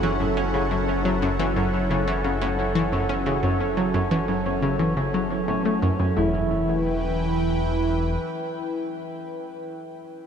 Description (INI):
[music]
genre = ambient, sequencer-driven space music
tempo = 88 BPM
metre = 4/4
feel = straight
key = E dorian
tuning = A4 = 438 Hz
[part]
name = phased analog pad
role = sustained chords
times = 0.0-9.7 s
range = E3 to G5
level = -26 LUFS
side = right 1 dB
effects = phaser, chorus
[part]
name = concert harp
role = arpeggios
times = 0.0-8.9 s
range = C#4 to E4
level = -30 LUFS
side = left 1 dB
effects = auto-pan, tape echo
[part]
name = analog pluck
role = riff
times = 0.0-6.5 s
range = E2 to C#4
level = -25 LUFS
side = equal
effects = chorus, tape echo
[part]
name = round analog bass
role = bass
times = 0.0-8.2 s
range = E1 to F#1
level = -30 LUFS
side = equal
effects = none
[part]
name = pulsing gated texture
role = texture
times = 0.0-6.2 s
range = E4 to E5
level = -36 LUFS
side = right 2 dB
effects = chorus, built-in reverb
[sound]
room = wet huge ambient reverb, RT60 7.5 s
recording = in a vast, echoing space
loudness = -21 LUFS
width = side -7 dB against mid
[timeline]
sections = 0.0-6.2 A section; 6.2-8.9 B section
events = none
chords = 0.0 F#m; 6.2 Em